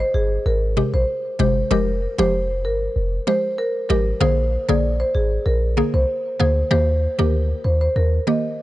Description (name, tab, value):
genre	dancehall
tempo	96 BPM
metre	4/4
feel	straight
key	Eb major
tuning	A4 = 440 Hz
part	marimba with medium mallets	melody	0.0-8.4 s	Ab4 to Eb5	-22 LUFS	equal	none
part	clean 808-style bass	bass	0.0-8.2 s	F1 to Eb2	-20 LUFS	equal	none
part	mallet-like synth pluck	accompaniment	0.8-8.4 s	C3 to Ab4	-22 LUFS	equal	chorus, phaser
room	small room ambience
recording	dry, gritty hardware recording, nothing above 10.5 kHz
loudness	-18 LUFS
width	side -16 dB against mid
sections	0.0-6.7 A section; 6.7-8.6 B section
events	none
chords	0.0 Abmaj7; 1.7 Fmadd9; 4.2 Bb7; 6.7 Eb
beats	0.46 1.08 | 1.71 2.33 2.96 3.58 | 4.21 4.83 5.46 6.08 | 6.71 7.33 7.96